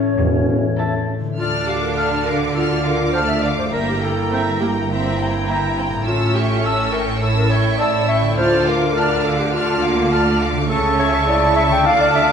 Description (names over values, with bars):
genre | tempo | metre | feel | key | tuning
cinematic, playful, whimsical film cue | 103 BPM | 4/4 | straight | D minor | A4 = 440 Hz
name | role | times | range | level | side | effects
rich studio violin section | melody | 0.0-12.3 s | E5 to F6 | -26 LUFS | left 2 dB | none
mellow hollow flute section | second line | 0.0-12.3 s | C#5 to Bb5 | -25 LUFS | equal | none
rich studio violin section | second line | 0.0-12.3 s | A4 to D6 | -26 LUFS | left 1 dB | none
rich studio viola section | accompaniment | 0.0-12.3 s | E3 to F4 | -24 LUFS | right 2 dB | none
mellow French horn section | sustained chords | 0.0-11.4 s | A3 to E4 | -26 LUFS | left 4 dB | none
concert harp | arpeggios | 0.0-12.3 s | G2 to E5 | -28 LUFS | left 3 dB | none
rich studio cello section | bass | 0.2-12.3 s | E2 to D3 | -24 LUFS | right 3 dB | none
rich studio double bass section | bass | 0.2-12.3 s | E1 to D2 | -24 LUFS | right 2 dB | none
warm tuba | bass | 0.2-0.7 s | E1 | -24 LUFS | right 3 dB | none
dark clarinet | second line | 0.8-12.3 s | E4 to G5 | -22 LUFS | left 1 dB | none
mellow oboe | second line | 0.8-12.3 s | E5 to A5 | -26 LUFS | equal | none
room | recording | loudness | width
wet recital hall reverb, RT60 1.6 s | recorded in a church or concert hall | -15 LUFS | side -7 dB against mid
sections
0.0-1.4 A section; 1.4-12.3 B section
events
none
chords
0.0 A; 1.4 Dm; 3.7 Edim/G; 6.1 A7; 8.4 Dm; 10.7 A/C#